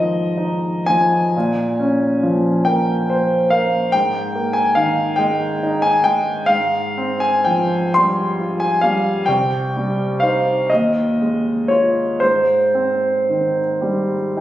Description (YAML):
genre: classical, impressionist solo piano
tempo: 36-50 BPM (dotted quarters)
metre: 6/8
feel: rubato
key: Ab major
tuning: A4 = 440 Hz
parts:
  - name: clear concert grand piano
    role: solo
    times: 0.0-14.4 s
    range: C2 to C6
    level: -15 LUFS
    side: equal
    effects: none
room: wet stone room reverb, RT60 1.4 s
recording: recorded on a phone in the room, studio reverb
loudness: -15 LUFS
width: side -13 dB against mid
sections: 0.0-14.4 A section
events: none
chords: 0.0 Absus2; 1.3 Bbm9; 3.9 Absus2; 6.5 Fmadd9/Ab; 9.3 Cm; 10.7 Ebsus24; 12.2 Abmaj7